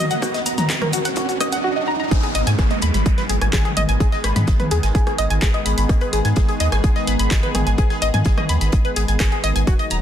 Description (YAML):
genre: melodic techno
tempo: 127 BPM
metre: 4/4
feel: straight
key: G# minor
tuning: A4 = 444 Hz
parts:
  - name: sweeping resonant pad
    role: sustained chords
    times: 0.0-10.0 s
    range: D#3 to G#4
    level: -28 LUFS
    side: equal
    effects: chorus, sidechain pumping
  - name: tight sequenced synth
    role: arpeggios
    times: 0.0-10.0 s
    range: F#4 to A#6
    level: -23 LUFS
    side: left 1 dB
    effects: chorus, sidechain pumping, ping-pong delay
  - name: riser and downlifter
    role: sound effects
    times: 0.0-5.9 s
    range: none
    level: -26 LUFS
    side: right 3 dB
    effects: none
  - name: punchy analog drum machine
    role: drums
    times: 0.1-10.0 s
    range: handclaps, hi-hat, rim click, toms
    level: -25 LUFS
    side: equal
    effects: overdrive, sidechain pumping on hats, sidechain pumping on toms
  - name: cabasa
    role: percussion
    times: 0.1-1.6 s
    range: none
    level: -30 LUFS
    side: left 2 dB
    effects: none
  - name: electronic kick drum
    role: drums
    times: 0.2-9.8 s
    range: none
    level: -18 LUFS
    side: equal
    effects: high-pass filter on kick, high-pass filter on room
  - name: soft-mallet drum kit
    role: drums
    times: 0.2-10.0 s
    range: hi-hat, snare drum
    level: -38 LUFS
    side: left 4 dB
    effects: none
  - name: round analog bass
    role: bass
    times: 2.1-10.0 s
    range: D#1 to G#2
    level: -20 LUFS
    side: equal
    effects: sidechain pumping
room: light reverb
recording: dense, heavily limited modern master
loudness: -16 LUFS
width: side -10 dB against mid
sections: 0.0-2.1 A section; 2.1-10.0 B section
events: build-up 0.0-2.1; riser 0.0-2.1; drop 2.1-10.0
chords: 0.0 D#m; 2.1 G#m